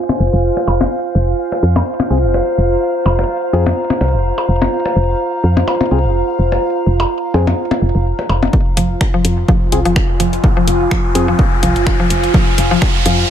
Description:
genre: minimal techno.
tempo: 126 BPM.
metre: 4/4.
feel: swing 55% on 16ths.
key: F minor.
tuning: A4 = 440 Hz.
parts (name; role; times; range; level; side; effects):
bubbling stepped-filter texture; texture; 0.0-13.3 s; F5; -26 LUFS; right 1 dB; chorus, built-in reverb, sidechain pumping.
warbly tape-like pad; texture; 0.0-13.3 s; F4 to Bb5; -18 LUFS; equal; chorus, built-in reverb, sidechain pumping.
percussion blips; percussion; 0.1-8.5 s; none; -19 LUFS; left 3 dB; none.
woody FM bass; bass; 0.2-13.2 s; F1 to F2; -15 LUFS; equal; sidechain pumping.
percussive organ stab; stabs; 2.1-11.3 s; C4 to Ab4; -22 LUFS; left 3 dB; chorus, phaser, cassette tape, digital delay.
electronic kick drum; drums; 8.5-12.9 s; none; -15 LUFS; equal; none.
riser; sound effects; 9.9-13.3 s; none; -22 LUFS; equal; none.
mallet-like synth pluck; riff; 8.8-13.1 s; F3; -19 LUFS; left 1 dB; chorus, sidechain pumping, digital delay.
house drum kit; drums; 8.8-13.2 s; finger snaps, hi-hat; -22 LUFS; left 1 dB; none.
room: light reverb.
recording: low-pass filter.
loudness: -12 LUFS.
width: side -9 dB against mid.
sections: 0.0-8.5 A section; 8.5-13.3 B section.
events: filter sweep 0.0-8.5; build-up 8.5-13.3; filter sweep on synth arpeggio sound 8.5-13.3; riser 9.9-13.3.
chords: 0.0 Fm.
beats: 0.44 | 0.91 1.39 1.87 2.34 | 2.82 3.29 3.77 4.25 | 4.72 5.20 5.68 6.15 | 6.63 7.10 7.58 8.06 | 8.53 9.01 9.48 9.96 | 10.44 10.91 11.39 11.87 | 12.34 12.82 13.29.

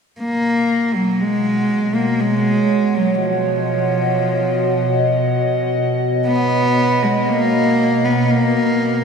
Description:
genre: ambient.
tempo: 59 BPM.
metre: 3/4.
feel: straight.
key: B lydian.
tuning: A4 = 440 Hz.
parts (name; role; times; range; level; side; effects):
warm cello; melody; 0.2-9.0 s; E#3 to B3; -17 LUFS; equal; tape echo.
warbly tape-like pad; sustained chords; 1.1-9.0 s; B2 to F#5; -18 LUFS; right 1 dB; chorus, built-in reverb, phaser.
bowed-like drone; drone; 3.6-9.0 s; B2; -34 LUFS; left 4 dB; none.
room: wet lush hall reverb, RT60 3.3 s.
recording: cassette tape.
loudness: -15 LUFS.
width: side -6 dB against mid.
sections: 0.2-9.0 A section.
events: none.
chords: 0.2 Bmaj9#11.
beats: | 0.17 1.19 2.21 | 3.23 4.24 5.26 | 6.28 7.29 8.31.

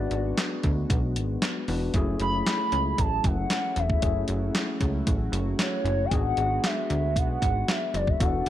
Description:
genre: early-eighties boogie funk.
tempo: 115 BPM.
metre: 4/4.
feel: straight.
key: unclear.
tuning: A4 = 440 Hz.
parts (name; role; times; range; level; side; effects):
gliding portamento lead; melody; 0.0-8.5 s; C#5 to B5; -28 LUFS; equal; chorus, phaser, slapback echo.
overdriven tine electric piano; accompaniment; 0.0-8.5 s; A3 to B4; -32 LUFS; left 3 dB; none.
chorused pulse-width pad; sustained chords; 0.0-8.5 s; E3 to A4; -36 LUFS; right 1 dB; none.
plucky analog bass; bass; 0.0-8.5 s; E1 to D2; -28 LUFS; equal; none.
clean 12-bit digital drum machine; drums; 0.1-8.5 s; handclaps, hi-hat, kick drum, snare drum; -27 LUFS; equal; gated reverb.
room: light reverb.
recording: none.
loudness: -23 LUFS.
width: side -12 dB against mid.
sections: 0.0-8.5 A section.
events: none.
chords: 0.0 G#m7b5; 1.9 F#m7; 6.1 G#m7b5.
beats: 0.38 0.90 1.42 | 1.94 2.46 2.98 3.51 | 4.03 4.55 5.07 5.59 | 6.12 6.64 7.16 7.68 | 8.20.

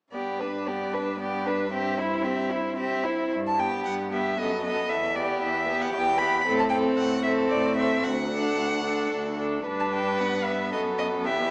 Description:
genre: quick classical-period movement for string quartet.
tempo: 114 BPM.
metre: 3/4.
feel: rubato.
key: G major.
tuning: A4 = 440 Hz.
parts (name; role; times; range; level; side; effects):
rich violin; melody; 0.1-11.5 s; B4 to B5; -31 LUFS; equal; none.
rich violin; second line; 0.1-11.5 s; E4 to B4; -32 LUFS; equal; none.
rich viola; accompaniment; 0.1-11.5 s; B3 to E4; -32 LUFS; equal; none.
clear cello; bass; 0.1-11.5 s; D2 to A2; -35 LUFS; equal; none.
room: wet recital hall reverb, RT60 1.7 s.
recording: small speaker sound.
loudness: -26 LUFS.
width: mono.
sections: 0.1-3.3 A section; 3.3-11.5 B section.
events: none.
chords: 0.1 G; 1.7 C/G; 3.3 G; 4.4 B7/F#; 4.9 Em; 6.5 Am; 8.0 D; 9.7 G; 10.7 B7(no3)/F#.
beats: | 0.12 0.66 1.19 | 1.72 2.23 2.77 | 3.31 3.86 4.39 | 4.91 5.43 5.94 | 6.46 6.98 7.50 | 8.03 8.57 9.11 | 9.66 10.20 10.72 | 11.25.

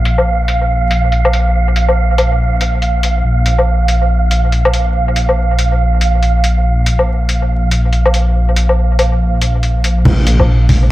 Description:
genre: deep dubstep.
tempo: 141 BPM.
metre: 4/4.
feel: swing 60% on 16ths, half-time.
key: unclear.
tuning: A4 = 440 Hz.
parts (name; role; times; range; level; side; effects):
dark detuned saw bass; bass; 0.0-10.9 s; Bb1; -12 LUFS; equal; none.
wind-like tuned noise texture; texture; 0.0-10.1 s; F5; -20 LUFS; right 6 dB; built-in reverb.
trip hop sampler-style drum kit; drums; 0.1-10.8 s; crash cymbal, hi-hat, woodblock; -18 LUFS; left 2 dB; low-pass filter on hats, low-pass filter on snare, low-pass filter on perc, low-pass filter on cymbals, dub echo.
electronic kick drum; drums; 10.1-10.8 s; none; -13 LUFS; equal; none.
congas; percussion; 10.1-10.8 s; none; -16 LUFS; equal; dub echo.
room: light reverb.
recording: echo-heavy mix, vinyl crackle.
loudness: -11 LUFS.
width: side -16 dB against mid.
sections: 0.0-10.1 A section.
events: none.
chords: 0.0 Bb5.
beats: 0.27 0.69 1.12 | 1.54 1.97 2.40 2.82 | 3.25 3.67 4.10 4.52 | 4.95 5.37 5.80 6.22 | 6.65 7.08 7.50 7.93 | 8.35 8.78 9.20 9.63 | 10.05 10.48 10.91.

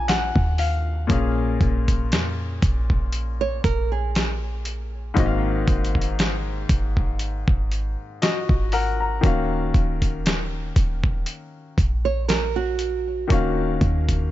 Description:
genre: contemporary R&B.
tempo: 59 BPM.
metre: 4/4.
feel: swing 54% on 16ths.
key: Eb minor.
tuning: A4 = 436 Hz.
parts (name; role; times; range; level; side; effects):
clear baby grand piano; accompaniment; 0.0-14.3 s; Ab2 to Bb5; -26 LUFS; left 4 dB; none.
clean 808-style bass; bass; 0.0-14.3 s; Eb1 to F2; -24 LUFS; equal; none.
dusty soul sampler-style drum kit; drums; 0.1-14.3 s; hi-hat, kick drum, snare drum; -22 LUFS; equal; overdrive.
nylon-string guitar; arpeggios; 3.4-5.1, 12.1-14.0 s; Gb4 to Db5; -26 LUFS; right 8 dB; ping-pong delay.
room: digital ambience.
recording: nothing above 7.6 kHz.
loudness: -20 LUFS.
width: side -14 dB against mid.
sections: 0.0-14.3 A section.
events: grand piano fill 0.0-1.1.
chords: 0.0 Ebm9; 1.1 Bbm7; 5.2 Ab13; 9.2 Ebm9.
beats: 0.08 | 1.10 2.12 3.13 4.15 | 5.17 6.18 7.20 8.22 | 9.23 10.25 11.27 12.29 | 13.30.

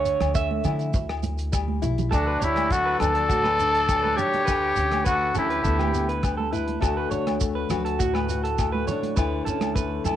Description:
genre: highlife guitar band.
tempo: 102 BPM.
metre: 4/4.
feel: straight.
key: D major.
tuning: A4 = 440 Hz.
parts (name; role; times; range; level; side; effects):
nylon-string guitar; accompaniment; 0.0-10.2 s; A2 to F#4; -30 LUFS; left 8 dB; cassette tape.
electric guitar through a small old amp; arpeggios; 0.0-10.2 s; F#4 to E5; -29 LUFS; right 7 dB; cassette tape, analog delay.
upright bass; bass; 0.0-10.2 s; B1 to D3; -29 LUFS; equal; none.
damped 70s drum kit; drums; 0.1-10.2 s; hi-hat, kick drum, rim click; -28 LUFS; equal; cassette tape.
shekere; percussion; 0.1-10.2 s; none; -34 LUFS; right 4 dB; none.
agogo bells; percussion; 0.2-10.2 s; none; -35 LUFS; left 10 dB; none.
congas; percussion; 0.2-10.2 s; none; -33 LUFS; right 7 dB; none.
growling trumpet; melody; 2.1-6.2 s; D4 to A4; -23 LUFS; equal; cassette tape.
trumpet with metal mute; second line; 2.1-6.2 s; F#4 to D5; -31 LUFS; left 7 dB; cassette tape, analog delay.
room: light reverb, small room ambience.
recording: home recording on cassette.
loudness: -21 LUFS.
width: side -11 dB against mid.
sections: 0.0-2.1 A section; 2.1-10.2 B section.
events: clean electric guitar solo 0.0-2.1; drum fill 1.7-2.1.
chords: 0.0 A/D; 0.9 Em/D; 2.1 D; 4.5 A/D; 5.7 Em/D; 6.8 D; 9.2 A/D.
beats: 0.36 0.95 1.53 | 2.12 2.71 3.30 3.89 | 4.47 5.06 5.65 6.24 | 6.83 7.41 8.00 8.59 | 9.18 9.76.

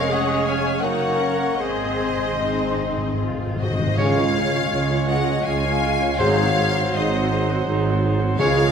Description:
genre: classical, slow romantic movement for symphony orchestra.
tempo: 73-86 BPM.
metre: 3/4.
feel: rubato.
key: Db major.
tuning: A4 = 440 Hz.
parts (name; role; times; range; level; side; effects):
rich chamber violin section; melody; 0.0-8.7 s; Eb5 to Ab5; -28 LUFS; left 4 dB; none.
bright flute section; second line; 0.0-8.7 s; C5 to Db6; -29 LUFS; left 4 dB; none.
rich studio violin section; second line; 0.0-8.7 s; Eb5 to Ab5; -30 LUFS; left 3 dB; none.
warm oboe; second line; 0.0-8.7 s; C5 to F5; -31 LUFS; right 2 dB; none.
rich chamber viola section; accompaniment; 0.0-8.7 s; C4 to Db5; -28 LUFS; right 2 dB; none.
warm bassoon; accompaniment; 0.0-8.7 s; Gb3 to Bb3; -28 LUFS; right 2 dB; none.
warm French horn section; sustained chords; 0.0-8.7 s; Gb3 to Ab4; -26 LUFS; left 4 dB; none.
rich chamber double bass section; bass; 0.0-8.7 s; F1 to Db2; -28 LUFS; right 4 dB; none.
warm chamber cello section; bass; 0.0-8.7 s; Db2 to Bb4; -29 LUFS; equal; none.
timpani; percussion; 1.6-8.7 s; Ab2 to Db3; -28 LUFS; left 2 dB; none.
clear trumpet; stabs; 4.0-8.7 s; C5 to Db5; -28 LUFS; right 2 dB; none.
mellow tuba; bass; 4.0-8.7 s; Ab1 to Db2; -24 LUFS; right 3 dB; none.
room: wet concert hall reverb, RT60 1.9 s.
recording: none.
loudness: -18 LUFS.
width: side -7 dB against mid.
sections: 0.0-4.0 A section; 4.0-8.7 B section.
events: timpani fill 1.6-4.0.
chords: 0.0 Db/F; 0.8 Gb; 1.6 Ab; 4.0 Db; 6.2 Ab7.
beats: 0.11 0.83 | 1.60 2.40 3.20 | 3.98 4.71 5.44 | 6.19 6.95 7.67 | 8.39.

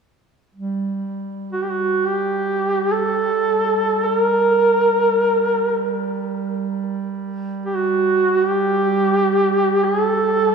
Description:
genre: caucasian folk, Caucasian lament.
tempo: free time.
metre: none.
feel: none.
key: G harmonic minor.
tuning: A4 = 440 Hz.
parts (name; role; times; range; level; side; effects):
mellow duduk; drone; 0.5-10.5 s; G3; -25 LUFS; right 5 dB; none.
warm duduk; melody; 1.5-10.5 s; F#4 to Bb4; -17 LUFS; right 1 dB; none.
room: wet cathedral reverb, RT60 4.2 s.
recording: studio reverb.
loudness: -17 LUFS.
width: side -5 dB against mid.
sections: 0.6-10.5 A section.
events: none.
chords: none.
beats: free time.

